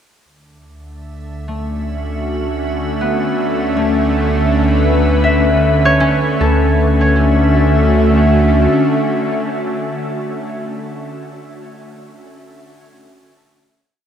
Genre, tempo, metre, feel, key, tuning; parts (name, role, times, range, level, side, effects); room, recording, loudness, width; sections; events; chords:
ambient; 78 BPM; 4/4; straight; D major; A4 = 439 Hz
glassy FM pad; sustained chords; 0.2-10.3 s; D3 to E5; -17 LUFS; left 1 dB; ensemble chorus, built-in reverb, shimmer reverb
round analog bass; bass; 0.2-8.7 s; D2; -18 LUFS; equal
bowed-like drone; drone; 1.3-10.3 s; D3 to A3; -21 LUFS; right 2 dB; built-in reverb
concert harp; arpeggios; 1.5-10.3 s; A3 to E5; -20 LUFS; left 2 dB; tape echo, shimmer reverb
wet huge ambient reverb, RT60 9.1 s; -12 LUFS; side -8 dB against mid
0.3-6.4 A section; 6.4-9.5 final chord
fade-in on ambient pad 0.3-6.4; fade-in on harp 0.3-6.4; fade-in on analog synth bass 0.3-6.4
0.3 Dmaj9